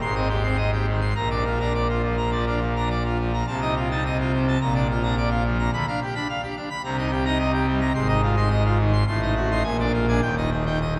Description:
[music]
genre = classical, organ toccata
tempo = 106 BPM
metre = 4/4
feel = straight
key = unclear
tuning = A4 = 441 Hz
[part]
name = pipe organ, full organ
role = solo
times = 0.0-11.0 s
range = Eb1 to C6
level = -23 LUFS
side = equal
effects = none
[sound]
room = wet cathedral reverb, RT60 4.9 s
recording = none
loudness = -23 LUFS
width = mono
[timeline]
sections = 0.0-11.0 A section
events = none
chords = 0.0 Abmaj7; 1.2 Bb; 3.5 F7/C; 4.6 Bb; 5.7 G7/D; 6.8 Cm7; 8.0 Fm7/Ab; 9.1 Adim7; 9.6 Bb7; 10.2 Eb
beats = 0.02 0.59 | 1.16 1.75 2.32 2.90 | 3.48 4.04 4.60 5.16 | 5.72 6.28 6.84 7.40 | 7.95 8.51 9.07 9.64 | 10.22 10.80

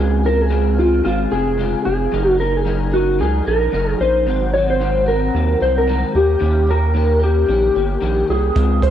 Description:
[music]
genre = indie pop, bedroom pop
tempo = 112 BPM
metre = 4/4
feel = swing 60% on 16ths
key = Db major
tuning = A4 = 439 Hz
[part]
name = mellow electric guitar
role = melody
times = 0.0-8.9 s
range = F4 to Db5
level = -18 LUFS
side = equal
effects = analog chorus, cassette tape, tape echo
[part]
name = electric guitar through a small old amp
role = accompaniment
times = 0.0-8.9 s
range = Ab2 to Bb4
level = -23 LUFS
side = left 7 dB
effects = analog chorus, vibrato effect, cassette tape
[part]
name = round analog bass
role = bass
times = 0.0-8.9 s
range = F1 to Eb2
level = -18 LUFS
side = right 1 dB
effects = none
[part]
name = compact cocktail drum kit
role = drums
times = 8.6-8.9 s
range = hi-hat, kick drum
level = -18 LUFS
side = right 1 dB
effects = cassette tape
[sound]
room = light reverb, studio ambience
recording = home recording on cassette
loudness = -14 LUFS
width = side -10 dB against mid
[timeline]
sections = 0.0-8.9 A section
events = none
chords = 0.0 Dbmaj7; 2.1 Gb6; 4.3 Ab7; 6.1 Eb7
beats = 0.52 1.05 1.59 | 2.13 2.66 3.20 3.73 | 4.27 4.81 5.34 5.88 | 6.42 6.95 7.49 8.02 | 8.56

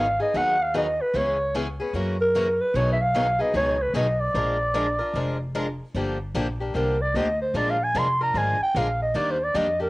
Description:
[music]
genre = acoustic string swing (jazz manouche)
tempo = 150 BPM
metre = 4/4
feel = swing 63% on 8ths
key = G minor from 5.9 s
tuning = A4 = 440 Hz
[part]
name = growling clarinet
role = melody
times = 0.0-9.9 s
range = Bb4 to C6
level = -22 LUFS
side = equal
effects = cassette tape
[part]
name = picked steel-string acoustic guitar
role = accompaniment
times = 0.0-9.7 s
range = B2 to Bb4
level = -34 LUFS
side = right 2 dB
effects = cassette tape
[part]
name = picked swing-style acoustic guitar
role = accompaniment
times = 0.0-9.9 s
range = B2 to Bb4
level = -30 LUFS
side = left 2 dB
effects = cassette tape
[part]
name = upright bass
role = bass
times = 0.0-9.9 s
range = F1 to Gb2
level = -29 LUFS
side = equal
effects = none
[sound]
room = light reverb, small room ambience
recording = home recording on cassette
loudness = -21 LUFS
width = side -21 dB against mid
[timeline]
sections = 0.0-5.9 A section; 5.9-9.9 B section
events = clarinet solo 5.9-9.9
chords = 0.0 Abm7; 1.1 Dbm7; 1.9 Gb7; 2.7 B6; 4.3 Bb7; 5.9 Gm7; 7.5 Bb7; 9.1 Ebmaj7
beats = 0.34 0.74 | 1.14 1.54 1.94 2.34 | 2.74 3.14 3.54 3.94 | 4.34 4.75 5.14 5.55 | 5.95 6.35 6.75 7.15 | 7.55 7.95 8.35 8.75 | 9.15 9.55

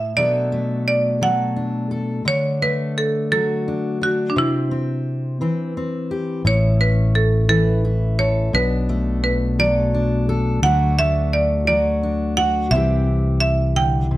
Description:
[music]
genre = folk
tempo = 57 BPM (dotted quarters)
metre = 6/8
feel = straight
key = unclear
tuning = A4 = 440 Hz
[part]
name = marimba with hard mallets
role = melody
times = 0.0-14.2 s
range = D4 to G5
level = -20 LUFS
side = right 2 dB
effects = none
[part]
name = fingerpicked steel-string acoustic guitar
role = accompaniment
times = 0.0-14.2 s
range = A2 to A4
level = -22 LUFS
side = left 1 dB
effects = none
[part]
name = fingered electric bass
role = bass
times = 6.4-14.2 s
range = A1 to D2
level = -20 LUFS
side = equal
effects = none
[sound]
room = moderate large studio reverb, RT60 1.0 s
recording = none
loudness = -17 LUFS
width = side -16 dB against mid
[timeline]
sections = 0.0-6.5 A section; 6.5-14.2 A section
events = none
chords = 0.2 Bm7; 2.3 D; 4.4 C; 6.5 A; 8.5 Bm7; 10.6 D; 12.7 C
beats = | 0.17 1.22 | 2.27 3.31 | 4.36 5.41 | 6.45 7.50 | 8.54 9.59 | 10.63 11.67 | 12.71 13.76

